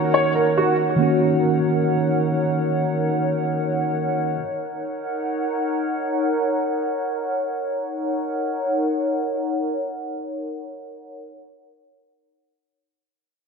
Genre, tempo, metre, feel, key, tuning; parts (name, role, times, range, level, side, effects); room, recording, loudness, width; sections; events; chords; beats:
hip hop; free time; Eb minor; A4 = 440 Hz
dark baby grand piano; melody; 0.0-0.8 s; Gb4 to Db5; -20 LUFS; right 1 dB; analog chorus, low-pass filter, digital delay
mellow tine electric piano; accompaniment; 0.0-4.4 s; Eb3 to Gb4; -22 LUFS; right 1 dB; medium stereo tremolo, low-pass filter
hollow soft pad; sustained chords; 0.0-11.1 s; Eb4 to Gb5; -23 LUFS; equal; chorus, low-pass filter
wet lush hall reverb, RT60 1.8 s, digital ambience; bright 1980s-style digital production; -20 LUFS; side -5 dB against mid
0.0-7.8 A section; 7.8-11.2 B section
filter sweep 0.0-7.8
0.0 Ebm7
free time